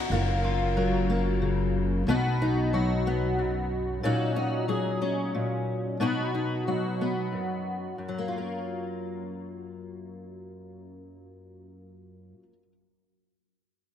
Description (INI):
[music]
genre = folk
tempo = 61 BPM (dotted quarters)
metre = 6/8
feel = straight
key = F# major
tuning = A4 = 442 Hz
[part]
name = fingerpicked steel-string acoustic guitar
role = accompaniment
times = 0.1-12.7 s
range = F#2 to A#4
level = -28 LUFS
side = left 1 dB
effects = analog chorus
[part]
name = upright bass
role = bass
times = 0.1-4.0 s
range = F#1 to B1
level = -29 LUFS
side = equal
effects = none
[sound]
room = moderate plate reverb, RT60 2.2 s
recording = bright 1980s-style digital production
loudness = -25 LUFS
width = side -9 dB against mid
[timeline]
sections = 0.1-8.0 A section; 8.0-11.9 B section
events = none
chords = 0.1 F#maj7; 2.1 B; 4.0 D#m7/A#; 6.0 B; 8.0 F#maj7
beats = | 0.10 1.08 | 2.06 3.04 | 4.03 5.01 | 6.00 6.99 | 7.98 8.97 | 9.96 10.95